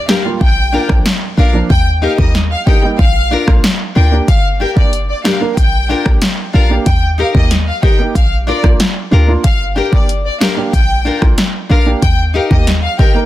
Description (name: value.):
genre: dancehall.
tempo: 93 BPM.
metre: 4/4.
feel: straight.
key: unclear.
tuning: A4 = 441 Hz.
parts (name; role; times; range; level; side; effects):
warm studio violin section; melody; 0.0-13.1 s; D5 to G5; -20 LUFS; left 2 dB; tape echo.
warm grand piano; accompaniment; 0.1-13.3 s; F3 to Bb4; -21 LUFS; right 4 dB; none.
nylon-string guitar; arpeggios; 0.1-13.2 s; D4 to Bb4; -19 LUFS; left 4 dB; none.
deep house drum kit; drums; 0.1-13.1 s; hi-hat, kick drum, rim click, snare drum; -13 LUFS; equal; overdrive.
short 808-style bass; bass; 0.4-12.9 s; G1 to Eb2; -13 LUFS; equal; none.
room: digital ambience.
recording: dense, heavily limited modern master.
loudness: -10 LUFS.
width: side -14 dB against mid.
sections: 0.0-13.3 A section.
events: none.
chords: 0.4 Bb; 1.7 Eb; 3.0 Bb; 4.3 Gm; 5.6 Bb; 6.9 Eb; 8.2 Bb; 9.4 Gm; 10.7 Bb; 12.0 Eb.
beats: 0.41 1.06 | 1.70 2.35 2.99 3.64 | 4.28 4.93 5.57 6.22 | 6.86 7.51 8.15 8.80 | 9.44 10.09 10.73 11.38 | 12.02 12.67.